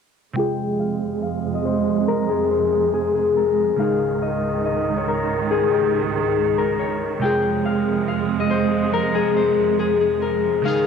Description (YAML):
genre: hip hop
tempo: 140 BPM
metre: 4/4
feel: half-time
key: F minor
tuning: A4 = 440 Hz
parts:
  - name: glassy digital keys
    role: accompaniment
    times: 0.3-10.9 s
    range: C3 to Ab4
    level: -26 LUFS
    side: equal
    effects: chorus, low-pass filter, cassette tape
  - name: concert harp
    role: melody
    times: 0.4-10.9 s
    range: G4 to G5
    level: -21 LUFS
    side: left 8 dB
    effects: low-pass filter, cassette tape, analog delay
  - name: warm symphonic string section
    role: sustained chords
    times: 0.4-10.9 s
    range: Db2 to Ab3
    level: -23 LUFS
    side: right 11 dB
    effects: low-pass filter, cassette tape
room: light reverb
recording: home recording on cassette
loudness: -18 LUFS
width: side -6 dB against mid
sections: 0.4-10.9 A section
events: filter sweep 0.4-10.9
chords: 0.4 Fm; 3.8 Dbsus2; 7.2 Fm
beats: | 0.36 0.79 1.22 1.65 | 2.08 2.51 2.94 3.36 | 3.79 4.22 4.65 5.08 | 5.51 5.93 6.36 6.79 | 7.22 7.65 8.08 8.51 | 8.94 9.36 9.79 10.22 | 10.65